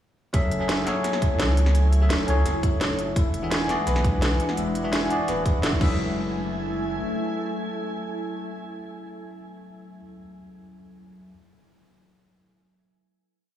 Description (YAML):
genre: liquid drum and bass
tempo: 170 BPM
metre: 4/4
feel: straight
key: F# minor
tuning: A4 = 441 Hz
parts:
  - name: bell-like tine electric piano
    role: accompaniment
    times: 0.3-11.3 s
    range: E3 to E5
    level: -29 LUFS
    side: equal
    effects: phaser, tape echo
  - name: glassy FM pad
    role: sustained chords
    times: 0.6-9.6 s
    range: G#3 to G#5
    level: -31 LUFS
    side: left 1 dB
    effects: ensemble chorus, built-in reverb, sidechain pumping
  - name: warm sub bass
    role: bass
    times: 0.3-7.0 s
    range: D1 to C#2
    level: -25 LUFS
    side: equal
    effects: none
  - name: electronic kick drum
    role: drums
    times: 0.3-5.9 s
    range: none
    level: -23 LUFS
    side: equal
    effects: none
  - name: garage drum kit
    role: drums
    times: 0.3-5.9 s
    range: crash cymbal, hi-hat, snare drum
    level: -28 LUFS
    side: right 1 dB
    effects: none
  - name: Celtic harp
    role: arpeggios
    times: 3.2-8.4 s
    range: E4 to B4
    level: -31 LUFS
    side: left 2 dB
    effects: tape echo
room: light reverb, digital ambience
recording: played on a big sound system in a bare room, stone room reverb, small room ambience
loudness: -21 LUFS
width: side -11 dB against mid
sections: 0.3-6.0 drop; 6.0-8.8 final hit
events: drop 0.3-6.0; band accent 5.6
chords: 0.3 F#m9; 3.2 E7; 5.8 F#m9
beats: | 0.34 0.69 1.04 1.40 | 1.75 2.10 2.46 2.81 | 3.16 3.52 3.87 4.22 | 4.57 4.93 5.28 5.63 | 5.99 6.34 6.69 7.04 | 7.40 7.75 8.10 8.46